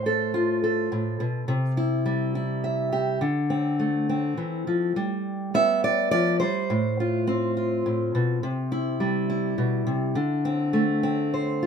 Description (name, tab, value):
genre	folk, solo fingerstyle acoustic guitar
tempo	104 BPM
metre	3/4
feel	straight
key	unclear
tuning	A4 = 440 Hz
part	fingerpicked steel-string acoustic guitar	solo	0.0-11.7 s	A2 to E5	-22 LUFS	equal	none
room	light reverb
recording	minimal, uncompressed stereo recording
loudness	-22 LUFS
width	side -6 dB against mid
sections	0.0-11.7 A section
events	none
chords	0.0 F/A; 1.5 C; 3.2 Dm7; 5.0 G7; 6.7 F/A; 8.4 C; 10.2 D7(no3)